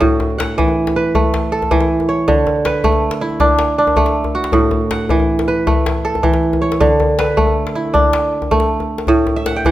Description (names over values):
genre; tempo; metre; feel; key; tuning
west african traditional, West African string and xylophone music; 106 BPM (dotted quarters); 12/8; straight; D major; A4 = 440 Hz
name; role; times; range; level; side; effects
kora; arpeggios; 0.0-9.7 s; A2 to G5; -14 LUFS; right 2 dB; none
djembe; percussion; 0.0-9.7 s; none; -19 LUFS; left 3 dB; none
room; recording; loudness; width
moderate recital hall reverb, RT60 1.4 s; none; -13 LUFS; side -14 dB against mid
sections
0.0-9.7 A section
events
kora fill 9.4-9.7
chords
0.0 A5; 2.3 D5; 4.5 A5; 6.8 D5; 9.1 A5